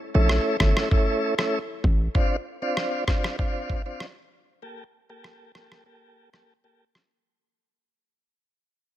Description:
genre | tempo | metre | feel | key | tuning
dancehall | 97 BPM | 4/4 | straight | unclear | A4 = 440 Hz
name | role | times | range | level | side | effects
tonewheel organ | accompaniment | 0.1-6.8 s | A3 to A4 | -27 LUFS | equal | fast rotary speaker
hard-hitting 808-style bass | bass | 0.1-2.1 s | G1 to Bb1 | -21 LUFS | equal | none
lo-fi sampler-style drum kit | drums | 0.3-7.1 s | kick drum, rim click | -24 LUFS | equal | none
room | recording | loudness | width
digital ambience | none | -22 LUFS | side -13 dB against mid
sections
0.0-7.1 A section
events
fade-out 0.0-7.1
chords
0.0 A; 2.1 Dm7; 4.6 Gmadd9

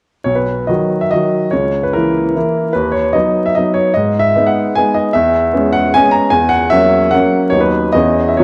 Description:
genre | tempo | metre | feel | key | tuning
classical, romantic triple-time dance for piano with dotted rhythms | 129-160 BPM | 3/4 | rubato | B major | A4 = 440 Hz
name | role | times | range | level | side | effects
clear baby grand piano | solo | 0.2-8.4 s | B1 to A#5 | -14 LUFS | equal | none
room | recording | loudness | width
wet recital hall reverb, RT60 1.5 s | dark, warm production, vinyl crackle | -14 LUFS | mono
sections
0.3-8.4 A section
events
none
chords
0.3 B; 1.5 A#dim/C#; 2.7 B/D#; 3.9 G#m; 5.1 C#m7/E; 6.3 F#7/E; 7.5 B/D#; 7.9 C#m7/E

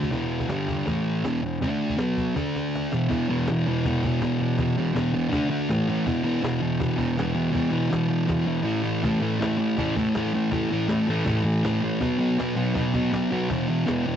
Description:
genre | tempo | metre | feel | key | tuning
garage rock duo or trio | 162 BPM | 4/4 | straight | unclear | A4 = 438 Hz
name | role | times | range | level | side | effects
thick fuzz guitar | riff | 0.0-14.2 s | E2 to D4 | -22 LUFS | equal | distortion, cassette tape
cajon | drums | 0.0-14.0 s | none | -32 LUFS | equal | cassette tape
room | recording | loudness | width
light reverb | home recording on cassette, nothing above 7.9 kHz | -22 LUFS | side -9 dB against mid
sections
0.0-3.1 A section; 3.1-14.2 B section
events
drum fill 2.4-3.1; kick and snare drop out 8.7-9.0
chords
0.1 E5; 0.5 G5; 0.9 A5; 1.2 E5; 1.6 D5; 2.0 B5; 2.4 D5; 2.9 E5; 5.3 D5; 5.7 A5; 6.1 E5; 8.7 A5; 12.0 B5; 13.5 E5

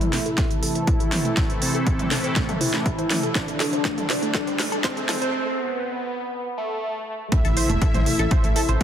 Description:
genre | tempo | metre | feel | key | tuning
melodic techno | 121 BPM | 4/4 | straight | A minor | A4 = 439 Hz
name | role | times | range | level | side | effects
wide unison lead | melody | 0.0-8.8 s | A3 to E4 | -26 LUFS | equal | sidechain pumping, dub echo
sweeping resonant pad | sustained chords | 0.0-8.8 s | C3 to A4 | -31 LUFS | left 1 dB | chorus, sidechain pumping
tight sequenced synth | arpeggios | 0.0-8.8 s | A3 to C5 | -31 LUFS | right 2 dB | chorus, sidechain pumping, tape echo
techno drum kit | drums | 0.0-8.8 s | hi-hat, snare drum, toms | -26 LUFS | right 1 dB | none
riser and impact | sound effects | 2.6-8.8 s | none | -35 LUFS | equal | none
electronic kick drum | drums | 0.4-8.8 s | none | -23 LUFS | equal | none
soft supersaw | second line | 7.3-8.8 s | E5 | -31 LUFS | equal | sidechain pumping, tape echo
swelling detuned saw bass | bass | 7.4-8.8 s | E1 to A1 | -24 LUFS | equal | tube saturation, sidechain pumping
room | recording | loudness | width
moderate lush hall reverb, RT60 2.7 s | dense, heavily limited modern master, high-pass filter | -20 LUFS | side -9 dB against mid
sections
0.0-7.3 A section; 7.3-8.8 B section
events
build-up 0.0-7.3; drum fill 0.0-5.3; filter sweep on synth arpeggio sound 0.0-7.3; break 5.3-7.3; drop 7.3-8.8; impact 7.3-8.8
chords
0.0 Am

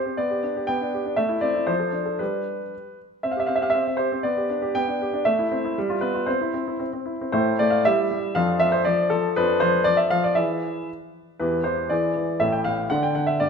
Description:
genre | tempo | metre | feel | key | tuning
classical-period piano sonatina | 119 BPM | 2/4 | straight | C major | A4 = 441 Hz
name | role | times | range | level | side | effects
clear baby grand piano | solo | 0.0-13.5 s | A1 to G5 | -21 LUFS | equal | none
room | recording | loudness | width
moderate recital hall reverb, RT60 1.5 s | minimal, uncompressed stereo recording | -21 LUFS | side -6 dB against mid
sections
0.0-7.3 A section; 7.3-13.5 B section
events
none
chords
0.2 G/B; 1.2 Am; 1.7 Dm7/F; 2.2 G; 3.2 C5; 4.3 G/B; 5.3 Am; 5.8 G7; 6.3 C; 7.3 Am; 7.8 Em/G; 8.4 Dm/F; 10.4 E; 11.4 Em; 11.9 E7; 12.4 A5; 12.9 D5

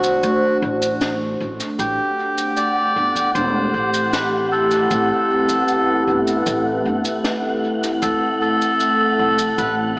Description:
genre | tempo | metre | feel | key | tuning
ambient dub | 77 BPM | 4/4 | straight | A dorian | A4 = 440 Hz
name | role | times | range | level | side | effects
melodica | melody | 0.0-9.8 s | F#4 to D5 | -20 LUFS | equal | dub echo
deep dark ambient pad | sustained chords | 0.0-10.0 s | A3 to C5 | -20 LUFS | equal | chorus, built-in reverb
upright bass | bass | 0.0-10.0 s | E1 to D2 | -26 LUFS | equal | none
shaker and snare drum | drums | 0.0-9.7 s | none | -28 LUFS | equal | dub echo
electronic kick drum | drums | 1.8-10.0 s | none | -39 LUFS | equal | none
wind-like tuned noise texture | texture | 2.6-10.0 s | F#5 | -26 LUFS | equal | built-in reverb, ensemble chorus
room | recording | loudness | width
wet lush hall reverb, RT60 2.4 s | dreamy mix soaked in reverb, AM radio sound | -16 LUFS | side -26 dB against mid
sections
0.0-10.0 A section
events
none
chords
0.0 D7; 1.8 Am9; 8.0 D7

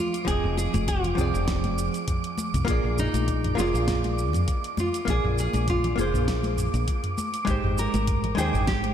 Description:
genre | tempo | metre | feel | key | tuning
sunset chillout | 100 BPM | 4/4 | swing 55% on 16ths | unclear | A4 = 440 Hz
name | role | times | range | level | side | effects
nylon-string guitar | melody | 0.0-8.9 s | Eb4 to Bb4 | -31 LUFS | equal | ping-pong delay, shimmer reverb
hollow-body jazz guitar | accompaniment | 0.0-8.9 s | F3 to G5 | -29 LUFS | equal | auto-pan, ping-pong delay, shimmer reverb
wind-like tuned noise texture | texture | 0.0-8.9 s | D6 | -34 LUFS | right 3 dB | built-in reverb, shimmer reverb
smooth R&B drum kit | drums | 0.1-8.9 s | hi-hat, shaker, snare drum, toms | -32 LUFS | right 1 dB | none
woody fretless electric bass | bass | 0.3-8.9 s | F1 to F2 | -26 LUFS | equal | tube saturation
electronic kick drum | drums | 0.3-8.8 s | none | -28 LUFS | equal | none
congas | percussion | 0.7-8.9 s | none | -35 LUFS | left 3 dB | none
room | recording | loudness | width
moderate lush hall reverb, RT60 2.2 s | dreamy mix soaked in reverb | -23 LUFS | side -9 dB against mid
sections
0.0-8.9 A section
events
none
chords
0.0 Fm7; 2.7 Bb7; 7.5 Abmaj7

